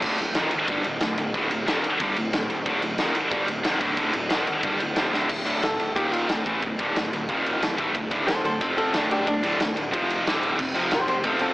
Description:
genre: heavy metal.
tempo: 182 BPM.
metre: 4/4.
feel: straight.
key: D minor from 5.3 s.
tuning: A4 = 441 Hz.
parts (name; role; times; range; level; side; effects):
high-gain distorted guitar; riff; 0.0-11.5 s; D2 to A3; -25 LUFS; equal; distortion.
fuzz picked electric bass; bass; 0.0-11.5 s; D1 to A1; -34 LUFS; equal; overdrive.
big rock drum kit; drums; 0.0-11.5 s; crash cymbal, kick drum, ride cymbal, snare drum; -27 LUFS; equal; none.
archtop guitar, miked and amplified; melody; 5.6-11.5 s; C4 to C5; -26 LUFS; equal; none.
room: light reverb, small room ambience.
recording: blown-out, overdriven recording, overdrive, AM radio sound.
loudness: -22 LUFS.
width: side -19 dB against mid.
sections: 0.0-5.3 A section; 5.3-11.5 B section.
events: drum fill 5.1; hollow-body jazz guitar solo 5.3-11.5.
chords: 0.0 Dm; 5.3 D5; 6.0 Eb5; 6.3 D5; 7.3 Eb5; 7.6 D5; 8.6 F5; 8.9 D5; 9.9 F5; 10.3 D5; 10.6 F5.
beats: | 0.01 0.34 0.67 1.00 | 1.33 1.66 1.99 2.32 | 2.65 2.98 3.31 3.64 | 3.97 4.30 4.63 4.97 | 5.30 5.63 5.96 6.29 | 6.62 6.95 7.28 7.62 | 7.95 8.28 8.61 8.94 | 9.27 9.60 9.93 10.26 | 10.59 10.92 11.24.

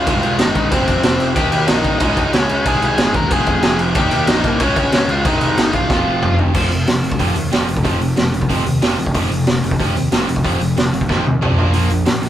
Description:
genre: punk rock.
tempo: 185 BPM.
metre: 4/4.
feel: straight.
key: F minor.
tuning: A4 = 440 Hz.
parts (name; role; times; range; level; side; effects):
high-gain lead guitar; melody; 0.0-6.4 s; Bb3 to Bb5; -20 LUFS; left 2 dB; distortion.
cranked stack guitar; riff; 0.0-12.3 s; F2 to Eb4; -22 LUFS; left 6 dB; overdrive.
overdriven semi-hollow guitar; riff; 0.0-12.3 s; F2 to Eb4; -22 LUFS; right 8 dB; none.
fuzz picked electric bass; bass; 0.0-12.3 s; F1 to Eb2; -23 LUFS; equal; overdrive.
raw garage drum kit; drums; 0.1-12.3 s; crash cymbal, hi-hat, kick drum, snare drum, toms; -17 LUFS; equal; none.
room: light reverb.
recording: band playing live in one room.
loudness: -14 LUFS.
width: side -11 dB against mid.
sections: 0.0-6.5 A section; 6.5-12.3 B section.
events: drum fill 5.9-6.5, 11.1-11.7.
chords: 0.1 Ab/C; 0.7 F5; 1.4 Eb; 2.0 Db5; 2.7 Ab/C; 3.3 Fm; 4.0 Eb; 4.6 Db; 5.2 Ab/C; 5.9 F5; 11.6 Bb5.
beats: | 0.07 0.39 0.72 1.04 | 1.36 1.69 2.01 2.33 | 2.66 2.98 3.31 3.63 | 3.95 4.28 4.60 4.92 | 5.25 5.57 5.90 6.22 | 6.54 6.87 7.19 7.52 | 7.84 8.17 8.49 8.82 | 9.14 9.47 9.79 10.12 | 10.44 10.76 11.09 11.41 | 11.74 12.06.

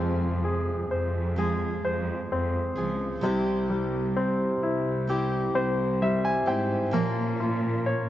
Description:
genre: pop.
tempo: 65 BPM.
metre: 4/4.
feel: straight.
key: F minor.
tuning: A4 = 435 Hz.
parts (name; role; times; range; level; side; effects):
clear concert grand piano; accompaniment; 0.0-8.1 s; C3 to Ab5; -27 LUFS; left 2 dB; none.
picked steel-string acoustic guitar; arpeggios; 0.0-8.1 s; F2 to Ab4; -32 LUFS; right 4 dB; ping-pong delay.
dark studio cello section; bass; 0.0-8.1 s; C2 to Bb2; -29 LUFS; equal; none.
room: moderate lush hall reverb, RT60 3.0 s.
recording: worn, warbling old tape, cassette tape, warbly pitch drift, nothing above 7.9 kHz.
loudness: -24 LUFS.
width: side -13 dB against mid.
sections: 0.0-8.1 A section.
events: grand piano fill 5.1-6.9.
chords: 0.0 Fm; 3.2 C; 6.9 Bbm.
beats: 0.44 1.38 2.31 | 3.23 4.16 5.09 6.01 | 6.93 7.86.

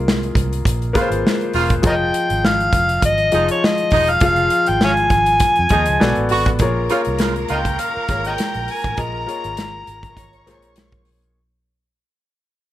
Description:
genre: lush 1970s-style soul.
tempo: 101 BPM.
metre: 4/4.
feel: swing 54% on 16ths.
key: Bb dorian.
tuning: A4 = 440 Hz.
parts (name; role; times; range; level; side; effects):
warm grand piano; accompaniment; 0.0-11.4 s; F3 to F5; -22 LUFS; left 3 dB; none.
vintage muted fingered electric bass; bass; 0.0-10.6 s; E1 to F2; -23 LUFS; right 1 dB; none.
modern studio drum kit; drums; 0.1-11.3 s; hi-hat, kick drum, snare drum; -20 LUFS; equal; none.
clear horn section; stabs; 1.0-7.9 s; C3 to F#4; -23 LUFS; right 3 dB; none.
overdriven harmonica; melody; 1.9-10.8 s; Bb4 to Bb5; -18 LUFS; equal; none.
warm studio string section; second line; 6.6-11.3 s; Bb4 to Db6; -30 LUFS; right 2 dB; none.
room: small room reverb.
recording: faint mains hum.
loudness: -15 LUFS.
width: side -14 dB against mid.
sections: 0.0-6.6 A section; 6.6-11.4 B section.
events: fade-out 6.6-11.4.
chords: 0.0 Bbm7; 1.8 Fm7; 6.0 Bm7; 6.6 Bbm7.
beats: 0.05 0.65 1.24 | 1.84 2.43 3.03 3.62 | 4.22 4.81 5.41 6.00 | 6.60 7.19 7.79 8.38 | 8.98 9.57 10.17 10.76.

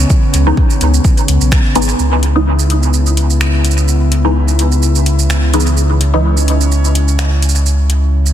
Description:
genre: dub techno.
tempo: 127 BPM.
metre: 4/4.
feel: swing 54% on 16ths.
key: C# minor.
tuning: A4 = 444 Hz.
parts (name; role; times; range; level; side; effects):
airy breathy pad; sustained chords; 0.0-8.3 s; C#3 to E4; -18 LUFS; left 1 dB; chorus, sidechain pumping.
warm sub bass; bass; 0.0-8.3 s; G#1 to C#2; -12 LUFS; equal; sidechain pumping.
deep house drum kit; drums; 0.1-8.3 s; finger snaps, hi-hat, shaker; -20 LUFS; right 3 dB; overdrive, small room reverb, soft clipping on snare, dub echo.
electronic kick drum; drums; 0.1-1.6 s; none; -11 LUFS; equal; overdrive, small room reverb.
filtered dub chord stab; stabs; 0.5-6.3 s; E3 to D#4; -18 LUFS; left 1 dB; phaser, sidechain pumping, dub echo.
room: light reverb, digital ambience.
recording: dense, heavily limited modern master.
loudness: -10 LUFS.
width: side -11 dB against mid.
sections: 0.0-2.0 A section; 2.0-8.3 B section.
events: none.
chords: 0.0 C#m7.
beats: | 0.10 0.57 1.05 1.52 | 1.99 2.46 2.94 3.41 | 3.88 4.35 4.83 5.30 | 5.77 6.24 6.72 7.19 | 7.66 8.13.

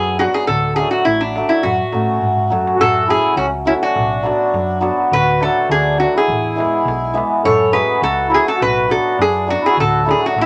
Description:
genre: balkan folk, Balkan wedding band.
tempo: 103 BPM.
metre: 2/4.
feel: straight.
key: F# minor.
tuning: A4 = 440 Hz.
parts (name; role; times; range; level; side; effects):
lap resonator guitar; melody; 0.0-10.5 s; D4 to C#5; -19 LUFS; equal; none.
hammered dulcimer; accompaniment; 0.0-10.5 s; E3 to F#4; -22 LUFS; equal; none.
hollow-body short-scale fingered electric bass; bass; 0.0-10.5 s; A1 to A2; -26 LUFS; equal; none.
darbuka; percussion; 0.2-10.5 s; none; -30 LUFS; equal; none.
mellow accordion; second line; 2.8-10.5 s; A3 to A4; -21 LUFS; equal; none.
room: wet small room ambience, RT60 0.5 s.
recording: none.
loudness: -16 LUFS.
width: mono.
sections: 0.0-2.8 A section; 2.8-10.5 A section.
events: drum fill 2.1-2.8.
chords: 0.5 D; 1.6 F#m; 4.0 Bm; 5.1 D; 6.3 E; 7.4 F#m; 8.6 Bm; 9.8 D.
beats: | 0.47 1.06 | 1.64 2.22 | 2.80 3.38 | 3.96 4.54 | 5.12 5.70 | 6.28 6.86 | 7.45 8.03 | 8.61 9.20 | 9.78 10.37.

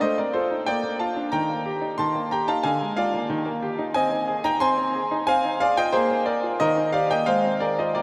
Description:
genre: classical-period piano sonatina.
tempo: 91 BPM.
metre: 2/4.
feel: straight.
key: unclear.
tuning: A4 = 440 Hz.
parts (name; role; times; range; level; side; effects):
bright concert grand piano; solo; 0.0-8.0 s; D3 to C6; -24 LUFS; equal; none.
room: wet huge ambient reverb, RT60 7.7 s.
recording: in a vast, echoing space.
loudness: -24 LUFS.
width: mono.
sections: 0.0-8.0 A section.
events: none.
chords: 0.0 F7/A; 0.7 Bb; 1.3 Eb; 2.6 Bb7/D; 3.3 Eb; 4.0 Ab/C; 5.3 Fm7/C; 5.9 Bb7; 6.6 Eb; 7.3 Fm/Ab.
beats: | 0.01 0.67 | 1.33 1.99 | 2.64 3.29 | 3.95 4.62 | 5.28 5.94 | 6.60 7.28 | 7.96.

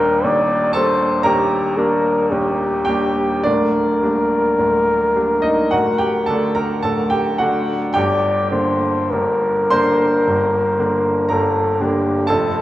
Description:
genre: classical, romantic duo for trumpet and grand piano.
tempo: 47-61 BPM.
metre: 4/4.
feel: rubato.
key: G minor.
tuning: A4 = 440 Hz.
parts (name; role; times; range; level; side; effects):
dark trumpet; melody; 0.0-12.6 s; G4 to D5; -18 LUFS; left 2 dB; none.
bright baby grand piano; accompaniment; 0.0-12.6 s; D1 to C6; -18 LUFS; right 1 dB; none.
room: wet recital hall reverb, RT60 1.6 s.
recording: none.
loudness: -15 LUFS.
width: side -14 dB against mid.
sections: 0.0-12.6 A section.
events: none.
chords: 0.0 Ebmaj7; 3.5 Gm/D; 5.7 D; 8.0 Gm.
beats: 0.25 1.26 2.31 | 3.45 4.59 5.72 6.84 | 7.96 9.12 10.27 11.31 | 12.30.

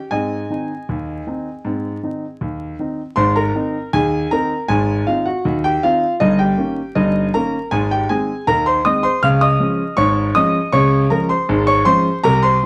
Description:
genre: ragtime piano.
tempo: 79 BPM.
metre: 2/4.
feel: straight.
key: Ab major.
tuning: A4 = 436 Hz.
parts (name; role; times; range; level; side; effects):
warm concert grand piano; solo; 0.0-12.7 s; G1 to F6; -18 LUFS; equal; none.
room: moderate studio reverb, RT60 0.7 s.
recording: vinyl crackle.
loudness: -18 LUFS.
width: mono.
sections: 0.0-3.2 A section; 3.2-12.7 A section.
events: none.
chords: 0.1 Ab; 6.2 Eb7/G; 7.7 Ab; 9.2 Db.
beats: | 0.10 0.87 | 1.64 2.40 | 3.17 3.92 | 4.68 5.44 | 6.20 6.95 | 7.71 8.47 | 9.22 9.98 | 10.74 11.49 | 12.25.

